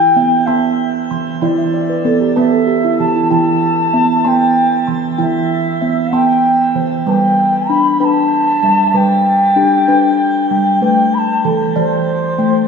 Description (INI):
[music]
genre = world meditative, meditative tuned percussion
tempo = 64 BPM (dotted quarters)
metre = 6/8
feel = straight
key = E minor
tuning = A4 = 443 Hz
[part]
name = bansuri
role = melody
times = 0.0-12.7 s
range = C5 to B5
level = -14 LUFS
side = equal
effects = shimmer reverb, diffuse ambient delay
[part]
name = steel tongue drum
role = arpeggios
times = 0.0-12.7 s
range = E3 to C6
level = -14 LUFS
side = right 1 dB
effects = shimmer reverb, diffuse ambient delay
[sound]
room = wet recital hall reverb, RT60 1.3 s, studio reverb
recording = studio ambience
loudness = -11 LUFS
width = side -6 dB against mid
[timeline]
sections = 0.0-12.7 A section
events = steel tongue drum fill 1.4-3.3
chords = 0.0 Em; 7.1 G; 10.8 Em